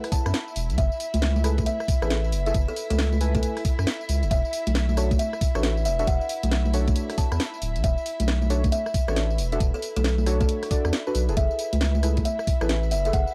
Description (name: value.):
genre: UK garage, two-step garage.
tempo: 136 BPM.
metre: 4/4.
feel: swing 63% on 16ths.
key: F# minor.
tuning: A4 = 440 Hz.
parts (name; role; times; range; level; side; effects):
dark chamber violin section; sustained chords; 0.0-13.3 s; E4 to E5; -40 LUFS; equal; sidechain pumping.
deep mellow chord stab; stabs; 0.0-13.1 s; D4 to G#5; -33 LUFS; equal; chorus.
garage drum kit; drums; 0.0-13.3 s; congas, hi-hat, rim click, snare drum, tambourine; -32 LUFS; equal; none.
kalimba; melody; 0.1-13.3 s; A4 to B5; -33 LUFS; equal; analog delay.
electronic kick drum; drums; 0.1-13.2 s; none; -26 LUFS; equal; none.
saturated sub bass; bass; 0.3-13.3 s; D1 to F#2; -26 LUFS; equal; none.
room: little or no reverb.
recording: dry, gritty hardware recording, vinyl crackle.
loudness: -24 LUFS.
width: mono.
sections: 0.0-13.3 A section.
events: kick drops out 10.9-11.4.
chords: 0.0 F#m11; 4.3 E13sus4; 11.4 F#m11.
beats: 0.34 | 0.78 1.22 1.66 2.10 | 2.54 2.99 3.43 3.87 | 4.31 4.75 5.19 5.63 | 6.08 6.52 6.96 7.40 | 7.84 8.28 8.72 9.16 | 9.60 10.04 10.49 10.93 | 11.37 11.81 12.25 12.69 | 13.13.